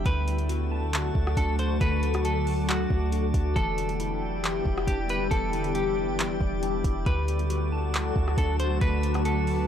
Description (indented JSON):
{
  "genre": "hip hop, atmospheric cloud-rap",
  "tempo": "137 BPM",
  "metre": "4/4",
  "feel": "half-time",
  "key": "unclear",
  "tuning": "A4 = 440 Hz",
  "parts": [
    { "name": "glassy FM pad", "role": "sustained chords", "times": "0.0-9.7 s", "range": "D3 to B4", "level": "-29 LUFS", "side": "left 3 dB", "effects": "ensemble chorus, built-in reverb, sidechain pumping" },
    { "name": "glassy digital keys", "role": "arpeggios", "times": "0.0-9.7 s", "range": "D3 to A5", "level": "-37 LUFS", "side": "right 2 dB", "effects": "chorus, low-pass filter, analog delay" },
    { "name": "clean 808-style bass", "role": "bass", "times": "0.0-9.7 s", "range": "E1 to D2", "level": "-28 LUFS", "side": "equal", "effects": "transformer saturation" },
    { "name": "drifting glass-harmonics texture", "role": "texture", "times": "0.0-9.7 s", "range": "E4 to A5", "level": "-38 LUFS", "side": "right 1 dB", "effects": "chorus, built-in reverb" },
    { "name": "semi-hollow electric guitar", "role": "melody", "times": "0.1-9.7 s", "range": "F#4 to C5", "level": "-33 LUFS", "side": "right 1 dB", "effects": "low-pass filter, analog delay" },
    { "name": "smooth R&B drum kit", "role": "drums", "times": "0.1-9.6 s", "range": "handclaps, hi-hat, kick drum, rim click", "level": "-29 LUFS", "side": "equal", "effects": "none" }
  ],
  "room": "digital ambience",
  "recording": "dry, gritty hardware recording, transformer saturation",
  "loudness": "-24 LUFS",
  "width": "side -9 dB against mid",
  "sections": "0.0-9.7 A section",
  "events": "none",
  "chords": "0.1 D; 3.6 Em7; 7.1 D",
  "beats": "| 0.06 0.49 0.93 1.37 | 1.81 2.25 2.69 3.12 | 3.56 4.00 4.44 4.87 | 5.31 5.75 6.19 6.63 | 7.06 7.50 7.94 8.38 | 8.82 9.25"
}